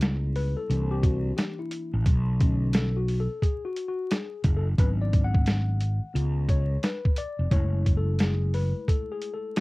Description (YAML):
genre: hip hop, jazz-hop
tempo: 88 BPM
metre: 4/4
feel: swing 65% on 16ths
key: F# minor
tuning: A4 = 439 Hz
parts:
  - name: mellow tine electric piano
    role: accompaniment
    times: 0.0-9.6 s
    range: D3 to F#5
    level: -32 LUFS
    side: left 4 dB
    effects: medium stereo tremolo, cassette tape
  - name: fretless electric bass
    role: bass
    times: 0.0-8.7 s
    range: E#1 to C#2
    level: -25 LUFS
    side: equal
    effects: none
  - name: boom bap sampler-style drum kit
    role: drums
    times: 0.0-9.6 s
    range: hi-hat, kick drum, snare drum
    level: -24 LUFS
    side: equal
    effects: cassette tape
room: light reverb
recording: home recording on cassette, vinyl crackle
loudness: -23 LUFS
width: side -22 dB against mid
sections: 0.0-9.6 A section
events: tine electric piano solo 0.0-9.6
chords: 0.0 C#m7b5; 0.7 C9; 2.1 Bm7; 4.8 G#m7b5; 6.2 C#7; 7.5 F#m7